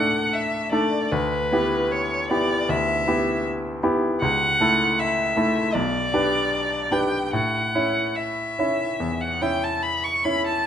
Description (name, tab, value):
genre	classical, romantic duo for violin and grand piano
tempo	71-80 BPM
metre	4/4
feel	rubato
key	unclear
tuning	A4 = 443 Hz
part	rich violin	melody	0.0-10.7 s	B4 to C#6	-23 LUFS	equal	none
part	bright grand piano	accompaniment	0.0-10.7 s	B1 to E5	-23 LUFS	equal	none
room	moderate recital hall reverb, RT60 1.4 s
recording	close, detailed microphones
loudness	-20 LUFS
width	side -9 dB against mid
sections	0.0-10.7 A section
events	none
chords	0.0 D; 1.1 Em7/D; 4.2 A/C#; 5.7 G/B; 7.3 A